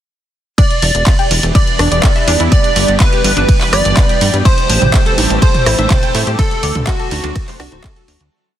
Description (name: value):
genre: progressive house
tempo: 124 BPM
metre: 4/4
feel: straight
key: E minor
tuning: A4 = 440 Hz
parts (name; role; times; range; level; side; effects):
- plucky unison lead; melody; 0.6-8.2 s; F#4 to D5; -17 LUFS; right 1 dB; lush chorus, sidechain pumping, digital delay
- soft round pluck; second line; 0.6-8.2 s; F#5 to D6; -27 LUFS; equal; analog chorus, cassette tape, sidechain pumping, digital delay
- shimmering ambient pad; sustained chords; 1.3-8.3 s; D3 to G4; -21 LUFS; equal; chorus, built-in reverb, sidechain pumping
- tight sequenced synth; arpeggios; 0.6-8.0 s; D4 to G5; -23 LUFS; equal; chorus, phaser, sidechain pumping, digital delay
- electronic kick drum; drums; 0.6-7.9 s; none; -12 LUFS; equal; studio reverb
- pop drum kit; drums; 0.6-8.3 s; handclaps, hi-hat, ride cymbal, rim click; -18 LUFS; right 1 dB; studio reverb
- plucky analog bass; bass; 0.8-8.3 s; D1 to A2; -16 LUFS; equal; tube saturation, sidechain pumping
- backwards swelling texture; texture; 5.2-8.3 s; A5; -30 LUFS; right 3 dB; built-in reverb, sidechain pumping
- electronic toms and congas; percussion; 4.8-7.8 s; none; -20 LUFS; right 2 dB; sidechain pumping on toms, studio reverb, sidechain pumping on perc
room: digital ambience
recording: dense, heavily limited modern master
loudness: -10 LUFS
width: side -11 dB against mid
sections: 0.6-8.3 drop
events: drop 0.6-8.3; fade-out 5.7-8.3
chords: 0.6 Em7; 2.5 G6; 4.5 Am7; 6.4 D7